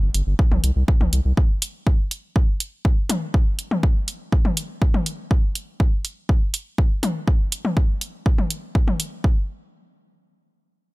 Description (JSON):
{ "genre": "melodic techno", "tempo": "122 BPM", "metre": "4/4", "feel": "straight", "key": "unclear", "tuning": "A4 = 440 Hz", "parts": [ { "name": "round analog bass", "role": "bass", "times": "0.0-1.3 s", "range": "G1 to C2", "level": "-19 LUFS", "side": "equal", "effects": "tube saturation, sidechain pumping" }, { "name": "punchy analog drum machine", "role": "drums", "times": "0.1-9.1 s", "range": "hi-hat, toms", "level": "-25 LUFS", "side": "left 1 dB", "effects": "overdrive" }, { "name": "electronic kick drum", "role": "drums", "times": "0.4-9.3 s", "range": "none", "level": "-18 LUFS", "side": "equal", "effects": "none" } ], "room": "little or no reverb", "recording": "none", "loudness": "-19 LUFS", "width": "side -22 dB against mid", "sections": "0.0-9.2 A section; 9.2-10.9 B section", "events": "none", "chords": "none", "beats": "0.39 0.88 | 1.37 1.86 2.36 2.85 | 3.34 3.83 4.32 4.82 | 5.31 5.80 6.29 6.78 | 7.28 7.77 8.26 8.75 | 9.24" }